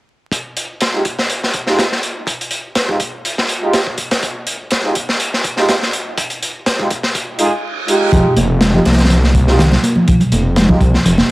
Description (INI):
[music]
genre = breakbeat, breaks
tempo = 123 BPM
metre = 4/4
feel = swing 54% on 16ths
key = F minor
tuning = A4 = 439 Hz
[part]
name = crunchy breakbeat drum kit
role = drums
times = 0.3-11.3 s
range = hi-hat, kick drum, snare drum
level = -16 LUFS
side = equal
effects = high-pass filter on kick, high-pass filter on hats, high-pass filter on snare, high-pass filter on room
[part]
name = warm brass ensemble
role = stabs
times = 0.9-10.8 s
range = Ab3 to Ab4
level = -18 LUFS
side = right 1 dB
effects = vintage 12-bit sampler grit, low-pass filter, digital delay
[part]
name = reverse cymbal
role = sound effects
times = 7.4-8.1 s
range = none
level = -24 LUFS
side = right 4 dB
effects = none
[part]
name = hollow-body short-scale picked electric bass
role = riff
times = 8.1-11.1 s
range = Eb3 to Bb3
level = -15 LUFS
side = equal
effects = overdrive, low-pass filter, digital delay
[part]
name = detuned saw bass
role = bass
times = 8.1-11.2 s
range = F1 to C2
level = -14 LUFS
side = equal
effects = none
[part]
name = congas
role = percussion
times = 8.4-11.3 s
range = none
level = -18 LUFS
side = right 2 dB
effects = none
[sound]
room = small room ambience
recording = vinyl crackle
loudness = -13 LUFS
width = side -19 dB against mid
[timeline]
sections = 0.3-8.1 A section; 8.1-11.3 B section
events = filter sweep on brass ensemble 0.3-8.1; reverse cymbal 7.4-8.1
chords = 0.3 Fm9